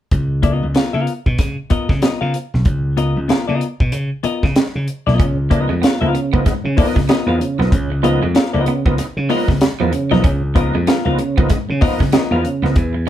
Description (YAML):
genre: funk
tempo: 95 BPM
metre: 4/4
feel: swing 60% on 16ths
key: Db mixolydian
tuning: A4 = 440 Hz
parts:
  - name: slap bass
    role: bass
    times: 0.1-13.1 s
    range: Cb2 to Db3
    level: -19 LUFS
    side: equal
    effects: none
  - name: tight funk drum kit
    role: drums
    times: 0.1-12.9 s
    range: hi-hat, kick drum, snare drum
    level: -17 LUFS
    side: equal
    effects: none
  - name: semi-hollow electric guitar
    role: accompaniment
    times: 0.4-12.5 s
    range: Cb4 to F5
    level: -20 LUFS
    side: left 5 dB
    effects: none
  - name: electric guitar at the edge of break-up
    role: riff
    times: 5.2-13.1 s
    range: F3 to Db4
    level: -25 LUFS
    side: right 4 dB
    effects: none
  - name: overdriven tonewheel organ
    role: stabs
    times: 5.2-12.9 s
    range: Db3 to Eb4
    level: -21 LUFS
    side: right 3 dB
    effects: chorus vibrato, slow rotary speaker
room: moderate studio reverb, RT60 0.5 s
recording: band playing live in one room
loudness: -14 LUFS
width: side -12 dB against mid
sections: 0.1-5.2 A section; 5.2-13.1 B section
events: none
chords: 0.1 Db13